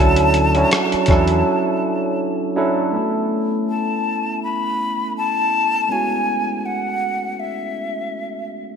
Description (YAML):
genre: R&B, neo-soul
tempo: 81 BPM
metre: 4/4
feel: swing 55% on 16ths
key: A major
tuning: A4 = 440 Hz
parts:
  - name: breathy jazz flute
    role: melody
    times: 0.0-8.5 s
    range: E5 to B5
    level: -21 LUFS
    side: left 2 dB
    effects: ping-pong delay
  - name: barky tine electric piano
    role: accompaniment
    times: 0.0-8.8 s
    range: F#3 to A4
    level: -20 LUFS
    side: right 2 dB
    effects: lush chorus
  - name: deep dub fingered electric bass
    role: bass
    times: 0.0-1.4 s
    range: D2 to E2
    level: -19 LUFS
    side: equal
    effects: none
  - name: dusty soul sampler-style drum kit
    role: drums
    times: 0.2-1.4 s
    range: hi-hat, kick drum, rim click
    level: -18 LUFS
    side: equal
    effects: gated reverb
room: wet lush hall reverb, RT60 1.9 s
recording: bright 1980s-style digital production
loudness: -17 LUFS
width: side -7 dB against mid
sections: 0.0-2.9 A section; 2.9-8.8 B section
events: break 1.5-2.9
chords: 0.0 Dmaj9; 2.9 Amaj9